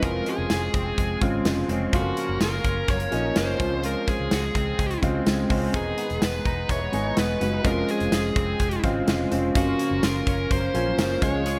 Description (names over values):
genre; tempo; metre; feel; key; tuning
1980s-style pop; 126 BPM; 4/4; straight; Db major; A4 = 440 Hz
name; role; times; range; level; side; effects
dark smooth lead guitar; melody; 0.0-11.6 s; Gb4 to Db5; -31 LUFS; equal; overdrive
clear baby grand piano; accompaniment; 0.0-11.6 s; Db3 to F5; -30 LUFS; equal; none
twelve-string electric guitar; riff; 0.0-11.6 s; D#3 to Ab4; -36 LUFS; equal; ensemble chorus
vintage muted fingered electric bass; bass; 0.0-11.6 s; E1 to Db2; -32 LUFS; equal; none
modern studio drum kit; drums; 0.0-11.6 s; hi-hat, kick drum, snare drum, tambourine; -29 LUFS; equal; none
mellow synth brass; stabs; 2.9-3.8, 6.7-11.4 s; F3 to C5; -36 LUFS; equal; none
room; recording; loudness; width
wet lush hall reverb, RT60 1.6 s, studio ambience; bright 1980s-style digital production; -24 LUFS; mono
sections
0.0-11.6 A section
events
none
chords
0.0 Dbmaj7/F; 1.9 Gbmaj7; 3.6 Dbmaj7; 5.7 Emaj7; 7.6 Dbmaj7/F; 9.6 Gbmaj7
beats
| 0.03 0.51 0.98 1.46 | 1.93 2.41 2.89 3.36 | 3.84 4.32 4.79 5.27 | 5.74 6.22 6.70 7.17 | 7.65 8.12 8.60 9.08 | 9.55 10.03 10.51 10.98 | 11.46